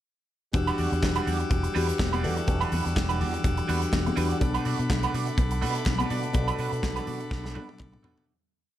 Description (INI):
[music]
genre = disco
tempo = 124 BPM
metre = 4/4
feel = swing 56% on 16ths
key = E minor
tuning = A4 = 444 Hz
[part]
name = electric guitar at the edge of break-up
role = accompaniment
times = 0.5-8.3 s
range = G3 to D5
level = -33 LUFS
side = right 8 dB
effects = wah
[part]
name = mellow tine electric piano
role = accompaniment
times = 0.5-8.3 s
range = B2 to A4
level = -31 LUFS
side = left 3 dB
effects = phaser
[part]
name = pipe organ, principal chorus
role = sustained chords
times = 0.5-8.2 s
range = G3 to E6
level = -35 LUFS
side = equal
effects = none
[part]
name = fingered electric bass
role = bass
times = 0.5-8.2 s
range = E1 to B2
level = -30 LUFS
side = equal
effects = none
[part]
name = modern studio drum kit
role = drums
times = 0.5-8.3 s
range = hi-hat, kick drum, snare drum, toms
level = -30 LUFS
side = equal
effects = gated reverb
[part]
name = congas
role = percussion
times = 0.5-8.0 s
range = none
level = -37 LUFS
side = left 6 dB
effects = none
[part]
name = group handclap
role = percussion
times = 1.0-7.9 s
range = none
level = -41 LUFS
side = left 2 dB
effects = none
[sound]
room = little or no reverb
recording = none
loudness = -24 LUFS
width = side -12 dB against mid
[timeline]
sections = 0.5-8.3 groove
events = fade-out 6.3-8.3; drum fill 7.3-8.3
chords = 0.5 Em9; 4.4 Bm7